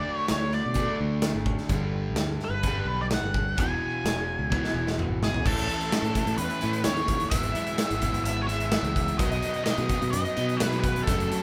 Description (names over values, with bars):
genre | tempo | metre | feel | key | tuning
classic rock | 128 BPM | 4/4 | straight | A lydian from 5.5 s | A4 = 442 Hz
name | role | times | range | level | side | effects
octave-fuzz lead guitar | melody | 0.0-11.4 s | G#4 to G#5 | -32 LUFS | equal | wah, distortion
overdriven semi-hollow guitar | riff | 0.0-11.4 s | E2 to F#4 | -33 LUFS | equal | spring reverb
fingered electric bass | bass | 0.0-11.3 s | E1 to B2 | -33 LUFS | equal | none
big rock drum kit | drums | 0.3-11.4 s | crash cymbal, hi-hat, kick drum, snare drum, toms | -32 LUFS | equal | none
room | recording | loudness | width
moderate large studio reverb, RT60 0.9 s | band playing live in one room | -27 LUFS | mono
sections
0.0-5.5 A section; 5.5-11.4 B section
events
drum fill 4.5-5.5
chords
0.0 D5; 1.7 G; 3.6 E; 5.5 A; 7.3 E/G#; 9.2 B